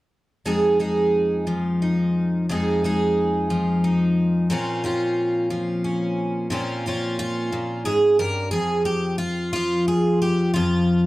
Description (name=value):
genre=folk, solo fingerstyle acoustic guitar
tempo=59 BPM (dotted quarters)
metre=6/8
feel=straight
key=F minor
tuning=A4 = 440 Hz
part: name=picked twelve-string acoustic guitar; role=solo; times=0.5-11.1 s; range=F2 to Bb4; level=-19 LUFS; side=equal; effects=none
room=moderate studio reverb, RT60 0.5 s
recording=dark, warm production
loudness=-20 LUFS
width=side -17 dB against mid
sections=0.4-8.5 A section; 8.5-11.1 B section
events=none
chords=0.4 Fm7; 4.5 Bbmadd9; 8.5 Fm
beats=| 0.45 1.47 | 2.49 3.50 | 4.50 5.50 | 6.51 7.52 | 8.54 9.55 | 10.57